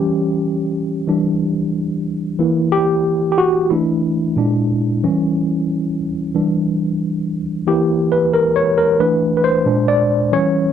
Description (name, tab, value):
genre	soul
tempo	91 BPM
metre	4/4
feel	straight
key	E dorian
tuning	A4 = 438 Hz
part	tine electric piano	solo	0.0-10.7 s	A#2 to D5	-15 LUFS	equal	overdrive, fast stereo tremolo
room	light reverb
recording	dry, close 1970s-style studio recording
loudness	-15 LUFS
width	side -8 dB against mid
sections	0.0-10.7 A section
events	tine electric piano solo 0.0-10.7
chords	0.0 Em6; 1.1 Em7; 2.4 Edim; 3.7 E7sus4; 4.4 A#7; 5.0 Em6; 6.4 Em7; 7.7 Edim7; 9.0 Bm7/E; 9.7 A#7